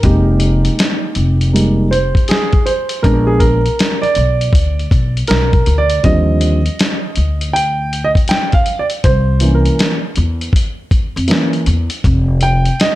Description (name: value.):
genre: hip hop, jazz-hop.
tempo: 80 BPM.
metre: 4/4.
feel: swing 65% on 16ths.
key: Eb major.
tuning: A4 = 440 Hz.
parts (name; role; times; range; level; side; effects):
dark concert grand piano; accompaniment; 0.0-13.0 s; D3 to G5; -16 LUFS; right 2 dB; none.
upright bass; bass; 0.0-12.7 s; F1 to F2; -14 LUFS; equal; none.
dusty soul sampler-style drum kit; drums; 0.0-13.0 s; hi-hat, kick drum, snare drum; -15 LUFS; left 1 dB; none.
room: small room reverb.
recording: none.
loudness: -12 LUFS.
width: side -16 dB against mid.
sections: 0.0-13.0 A section.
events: grand piano solo 0.0-13.0.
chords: 0.0 Fm11; 3.0 Bb7b9; 6.0 Ebmaj13; 9.0 C7b9; 12.0 F7sus2.